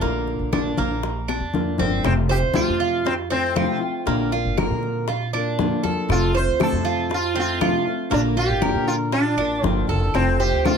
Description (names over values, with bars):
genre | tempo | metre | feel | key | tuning
latin, Cuban son and guajira | 119 BPM | 4/4 | straight | F major | A4 = 439 Hz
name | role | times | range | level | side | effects
flamenco guitar | accompaniment | 0.0-10.8 s | C3 to F4 | -26 LUFS | left 6 dB | none
Cuban tres | arpeggios | 0.0-10.8 s | Bb3 to C5 | -26 LUFS | right 6 dB | none
upright bass | bass | 0.0-10.8 s | F1 to Bb2 | -25 LUFS | right 1 dB | none
bongos | percussion | 0.0-10.8 s | none | -30 LUFS | left 7 dB | none
congas | percussion | 0.0-10.8 s | none | -27 LUFS | left 1 dB | none
claves | percussion | 0.5-10.8 s | none | -34 LUFS | right 4 dB | none
sitar | melody | 2.1-10.8 s | C4 to C5 | -24 LUFS | right 1 dB | none
room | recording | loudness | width
light reverb | none | -19 LUFS | side -6 dB against mid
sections
0.0-2.0 A section; 2.0-10.8 B section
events
drum fill 1.3-2.0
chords
0.0 Bb; 2.0 F; 4.1 Bb; 6.1 F; 8.1 Bb; 10.1 F